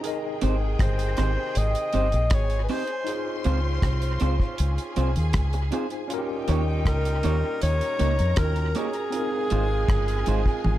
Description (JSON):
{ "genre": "lovers rock reggae", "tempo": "79 BPM", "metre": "4/4", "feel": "straight", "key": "Ab major", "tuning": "A4 = 440 Hz", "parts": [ { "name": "bright saxophone section", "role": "second line", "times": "0.0-10.8 s", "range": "Bb2 to Ab4", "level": "-37 LUFS", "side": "right 4 dB", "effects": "none" }, { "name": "warm studio string section", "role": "second line", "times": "0.0-10.8 s", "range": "G4 to C6", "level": "-36 LUFS", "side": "left 2 dB", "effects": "tape echo" }, { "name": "tine electric piano", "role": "accompaniment", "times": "0.0-10.8 s", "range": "C4 to G5", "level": "-34 LUFS", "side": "left 2 dB", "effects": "overdrive, fast stereo tremolo" }, { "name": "deep reggae drum kit", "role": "drums", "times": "0.0-10.8 s", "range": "hi-hat, kick drum, rim click, toms", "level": "-27 LUFS", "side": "equal", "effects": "none" }, { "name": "electric guitar through a small old amp", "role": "stabs", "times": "0.4-10.5 s", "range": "Ab3 to Db5", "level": "-32 LUFS", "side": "right 4 dB", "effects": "none" }, { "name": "deep dub fingered electric bass", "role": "bass", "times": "0.4-10.8 s", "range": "G1 to F2", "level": "-24 LUFS", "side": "equal", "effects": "none" }, { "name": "breathy alto saxophone", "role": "melody", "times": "0.8-10.8 s", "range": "Ab4 to Eb5", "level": "-28 LUFS", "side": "equal", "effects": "tape echo" } ], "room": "small room ambience", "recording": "dark, warm production", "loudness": "-22 LUFS", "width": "side -14 dB against mid", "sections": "0.0-10.8 A section", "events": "none", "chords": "0.0 Abmaj7; 3.1 Dbmaj7; 6.1 Eb7; 9.1 Ab6", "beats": "| 0.04 0.80 1.55 2.31 | 3.07 3.83 4.58 5.34 | 6.10 6.86 7.61 8.37 | 9.13 9.89 10.64" }